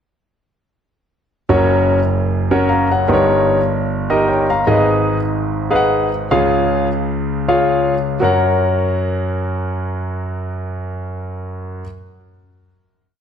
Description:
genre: gospel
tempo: 113-151 BPM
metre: 4/4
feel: swing 56% on 8ths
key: F# major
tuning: A4 = 440 Hz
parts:
  - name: clear grand piano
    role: solo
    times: 1.5-11.8 s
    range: F#1 to A#5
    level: -14 LUFS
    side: equal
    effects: none
room: wet concert hall reverb, RT60 1.9 s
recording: none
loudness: -14 LUFS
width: side -8 dB against mid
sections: 1.5-8.2 breakdown; 8.2-12.5 final chord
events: slowing down 4.7-8.2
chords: 1.5 F#; 3.1 D#7/G; 4.7 G#m; 6.3 C#; 8.2 F#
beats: | 1.49 1.88 2.28 2.68 | 3.08 3.48 3.87 4.27 | 4.67 5.07 5.47 5.88 | 6.31 6.75 7.21 7.70 | 8.21 8.74 9.28 9.81 | 10.34 10.87 11.40

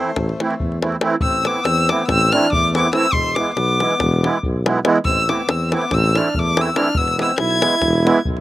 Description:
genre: balkan folk, Balkan wedding band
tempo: 283 BPM (eighths)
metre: 9/8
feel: straight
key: A harmonic minor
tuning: A4 = 441 Hz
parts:
  - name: warm violin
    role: melody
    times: 0.0-8.2 s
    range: C5 to G#6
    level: -20 LUFS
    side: left 1 dB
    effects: slapback echo
  - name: accordion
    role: second line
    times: 0.0-8.2 s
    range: G#3 to E4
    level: -24 LUFS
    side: equal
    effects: slapback echo
  - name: musette accordion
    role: accompaniment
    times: 0.0-8.2 s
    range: E3 to E4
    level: -20 LUFS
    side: right 3 dB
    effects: slapback echo
  - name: mellow tuba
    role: bass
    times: 0.2-8.4 s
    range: E1 to E2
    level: -21 LUFS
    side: equal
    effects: none
  - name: davul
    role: percussion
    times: 0.2-8.4 s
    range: none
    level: -23 LUFS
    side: left 2 dB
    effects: none
room: little or no reverb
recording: recorded outdoors, with no room sound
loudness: -15 LUFS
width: side -15 dB against mid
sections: 0.0-1.2 A section; 1.2-8.4 B section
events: none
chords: 0.0 Am; 3.1 E; 5.0 Am; 6.9 E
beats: 0.15 0.36 0.58 0.79 1.00 | 1.21 1.43 1.64 1.85 2.06 2.28 2.49 2.70 2.91 | 3.13 3.34 3.55 3.76 3.98 4.19 4.40 4.61 4.82 | 5.04 5.25 5.46 5.67 5.88 6.09 6.31 6.52 6.73 | 6.94 7.15 7.36 7.58 7.79 8.00 8.21

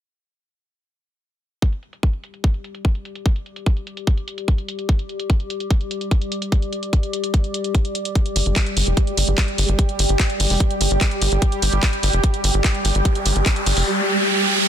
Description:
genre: psychedelic trance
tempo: 147 BPM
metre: 4/4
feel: straight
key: unclear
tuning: A4 = 442 Hz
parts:
  - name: electronic kick drum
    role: drums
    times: 1.6-13.5 s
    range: none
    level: -18 LUFS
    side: equal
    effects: none
  - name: garage drum kit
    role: drums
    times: 1.6-13.8 s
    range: handclaps, hi-hat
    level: -24 LUFS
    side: equal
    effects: low-pass filter on hats, low-pass filter on snare, low-pass filter on room
  - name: warbly tape-like pad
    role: texture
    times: 2.6-13.9 s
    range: G3 to D6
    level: -30 LUFS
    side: left 2 dB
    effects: chorus, built-in reverb, sidechain pumping
  - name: bubbling stepped-filter texture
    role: sustained chords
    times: 8.5-14.7 s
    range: G3 to G4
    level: -24 LUFS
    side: right 2 dB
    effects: chorus, built-in reverb, sidechain pumping
  - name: tight sequencer bass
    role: bass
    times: 8.4-13.8 s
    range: F1 to G1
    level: -19 LUFS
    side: equal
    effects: tube saturation
  - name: riser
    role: sound effects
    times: 12.9-14.7 s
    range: none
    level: -22 LUFS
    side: right 1 dB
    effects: none
room: digital ambience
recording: dense, heavily limited modern master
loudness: -18 LUFS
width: side -10 dB against mid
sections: 1.6-14.7 A section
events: fade-in on ambient pad 1.6-14.7; riser 12.9-14.7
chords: 1.6 G5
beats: | 1.62 2.03 2.44 2.85 | 3.26 3.66 4.07 4.48 | 4.89 5.30 5.71 6.11 | 6.52 6.93 7.34 7.75 | 8.15 8.56 8.97 9.38 | 9.79 10.20 10.60 11.01 | 11.42 11.83 12.24 12.64 | 13.05 13.46 13.87 14.28

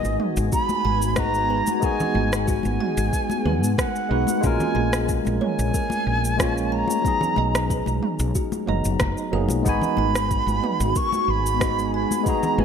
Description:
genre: sunset chillout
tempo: 92 BPM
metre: 4/4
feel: straight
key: G# dorian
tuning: A4 = 440 Hz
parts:
  - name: concert flute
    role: melody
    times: 0.0-12.6 s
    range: D#5 to C#6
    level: -26 LUFS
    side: right 2 dB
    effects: digital delay
  - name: bright tine electric piano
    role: accompaniment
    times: 0.0-12.6 s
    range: F#3 to A#5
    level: -26 LUFS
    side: equal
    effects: auto-pan, digital delay
  - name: shimmering ambient pad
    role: sustained chords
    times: 0.2-12.6 s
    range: G#3 to G#5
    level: -30 LUFS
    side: left 1 dB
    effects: chorus, built-in reverb, phaser
  - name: kalimba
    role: arpeggios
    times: 0.0-12.6 s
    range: E#4 to A#5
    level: -35 LUFS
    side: right 1 dB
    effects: digital delay
  - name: woody fretless electric bass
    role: bass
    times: 0.0-12.6 s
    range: F#1 to G#2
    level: -25 LUFS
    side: equal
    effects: none
  - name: deep house drum kit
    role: drums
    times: 0.0-12.6 s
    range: rim click, shaker, toms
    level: -29 LUFS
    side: right 1 dB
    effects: overdrive, small room ambience
  - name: congas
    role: percussion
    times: 0.0-12.6 s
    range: none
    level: -32 LUFS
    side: left 5 dB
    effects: none
  - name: electronic kick drum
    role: drums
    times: 0.5-12.4 s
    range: none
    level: -26 LUFS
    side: equal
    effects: small room ambience
room: light reverb, digital ambience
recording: bright 1980s-style digital production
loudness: -20 LUFS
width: side -7 dB against mid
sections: 0.0-12.6 A section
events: none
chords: 0.0 G#m7; 4.4 A#m7; 7.0 Bmaj7; 9.7 G#m7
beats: 0.53 1.18 | 1.83 2.48 3.13 3.79 | 4.44 5.09 5.74 6.39 | 7.05 7.70 8.35 9.00 | 9.66 10.31 10.96 11.61 | 12.27

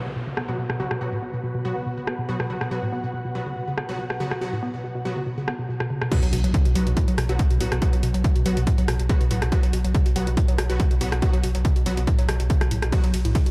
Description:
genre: driving peak-time techno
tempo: 141 BPM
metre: 4/4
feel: straight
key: unclear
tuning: A4 = 439 Hz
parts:
  - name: rave stab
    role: stabs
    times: 0.0-13.1 s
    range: F#3 to F#4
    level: -34 LUFS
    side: equal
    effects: chorus, built-in reverb, sidechain pumping, delay
  - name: downlifter and impact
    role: sound effects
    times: 0.0-2.7, 6.1-7.8 s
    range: none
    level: -38 LUFS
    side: equal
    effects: none
  - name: ethereal airy pad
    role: texture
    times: 0.6-6.1 s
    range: B3 to F#5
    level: -38 LUFS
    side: equal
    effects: ensemble chorus, built-in reverb, sidechain pumping
  - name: woody wave-folded pluck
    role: riff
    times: 0.1-13.5 s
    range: A2 to B3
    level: -30 LUFS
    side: equal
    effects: chorus, tube saturation, sidechain pumping, delay
  - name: punchy analog drum machine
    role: drums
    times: 0.4-13.5 s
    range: crash cymbal, hi-hat, ride cymbal, rim click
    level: -35 LUFS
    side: equal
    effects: overdrive, low-pass filter on hats, low-pass filter on cymbals, low-pass filter on snare, low-pass filter on room
  - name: electronic kick drum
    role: drums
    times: 6.1-13.4 s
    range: none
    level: -24 LUFS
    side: equal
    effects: overdrive
  - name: saturated sub bass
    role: bass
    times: 6.3-13.3 s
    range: B1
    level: -29 LUFS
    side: equal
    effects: tube saturation, sidechain pumping, low-pass filter
room: moderate cathedral reverb, RT60 4.9 s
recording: dreamy mix soaked in reverb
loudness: -23 LUFS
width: mono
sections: 0.0-6.1 A section; 6.1-13.5 B section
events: filter sweep on synth arpeggio sound 0.0-6.1; drop 6.1-13.5; impact 6.1-7.8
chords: 0.0 B5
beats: 0.16 0.58 | 1.01 1.44 1.86 2.29 | 2.71 3.14 3.56 3.99 | 4.41 4.84 5.26 5.69 | 6.12 6.54 6.97 7.39 | 7.82 8.24 8.67 9.10 | 9.52 9.95 10.37 10.80 | 11.22 11.65 12.07 12.50 | 12.93 13.35

